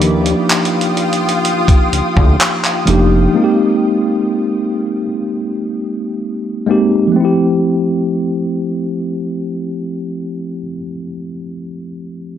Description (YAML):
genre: contemporary R&B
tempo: 63 BPM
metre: 4/4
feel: straight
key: unclear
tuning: A4 = 436 Hz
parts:
  - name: mellow tine electric piano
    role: accompaniment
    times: 0.0-12.4 s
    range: F3 to B4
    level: -15 LUFS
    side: equal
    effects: medium stereo tremolo
  - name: ethereal airy pad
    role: sustained chords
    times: 0.0-3.3 s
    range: F4 to Eb6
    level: -20 LUFS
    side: left 1 dB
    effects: ensemble chorus, built-in reverb
  - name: fat analog bass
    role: bass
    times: 0.0-3.3 s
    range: F1 to Eb2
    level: -14 LUFS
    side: equal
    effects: none
  - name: dusty soul sampler-style drum kit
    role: drums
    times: 0.0-3.1 s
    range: handclaps, hi-hat, kick drum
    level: -14 LUFS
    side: equal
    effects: none
room: light reverb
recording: none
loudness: -13 LUFS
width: side -10 dB against mid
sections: 0.0-7.2 A section; 7.2-11.0 B section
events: none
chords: 0.0 Ebmaj9; 3.4 Abmaj9; 7.2 Fmaj9